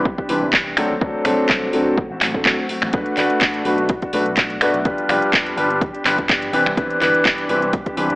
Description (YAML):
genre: filtered disco house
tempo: 125 BPM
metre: 4/4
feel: swing 54% on 16ths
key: D mixolydian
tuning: A4 = 440 Hz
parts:
  - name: clear concert grand piano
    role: accompaniment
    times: 0.0-8.1 s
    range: E3 to B4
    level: -19 LUFS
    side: equal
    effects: phaser, sidechain pumping, low-pass filter
  - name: mellow electric guitar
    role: riff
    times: 0.0-8.2 s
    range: E3 to G4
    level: -26 LUFS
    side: equal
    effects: sidechain pumping, low-pass filter
  - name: slap bass with an envelope filter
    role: bass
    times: 0.0-8.2 s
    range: F1 to C3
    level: -32 LUFS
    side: equal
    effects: sidechain pumping, low-pass filter
  - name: electronic kick drum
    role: drums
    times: 0.1-8.0 s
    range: none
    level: -22 LUFS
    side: equal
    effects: none
  - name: house drum kit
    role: drums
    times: 0.3-8.2 s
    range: finger snaps, handclaps, hi-hat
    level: -19 LUFS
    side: equal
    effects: overdrive, sidechain pumping on hats
room: moderate echo chamber reverb, RT60 1.5 s, digital ambience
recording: AM radio sound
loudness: -16 LUFS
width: side -21 dB against mid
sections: 0.0-8.2 A section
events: none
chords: 0.0 Cmaj9; 0.8 D7; 2.9 Bm7; 4.9 G7; 6.5 Cmaj9